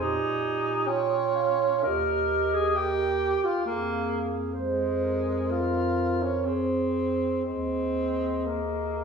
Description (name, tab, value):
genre	classical, lyrical piece for single-reed quartet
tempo	58-71 BPM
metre	4/4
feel	rubato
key	unclear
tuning	A4 = 440 Hz
part	mellow clarinet	melody	0.0-9.0 s	C5 to Ab5	-34 LUFS	left 3 dB	none
part	mellow clarinet	second line	0.0-9.0 s	F4 to C5	-31 LUFS	right 4 dB	none
part	warm tenor saxophone	accompaniment	0.0-9.0 s	Ab3 to Bb4	-27 LUFS	right 2 dB	none
part	dark bass clarinet	bass	0.0-9.0 s	Eb2 to Bb2	-33 LUFS	equal	none
room	wet recital hall reverb, RT60 1.3 s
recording	heard from further back in the room, small room ambience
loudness	-24 LUFS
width	side -6 dB against mid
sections	0.0-9.0 A section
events	none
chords	0.0 Bbm7; 1.9 Eb; 3.7 Fm; 7.4 Ebsus4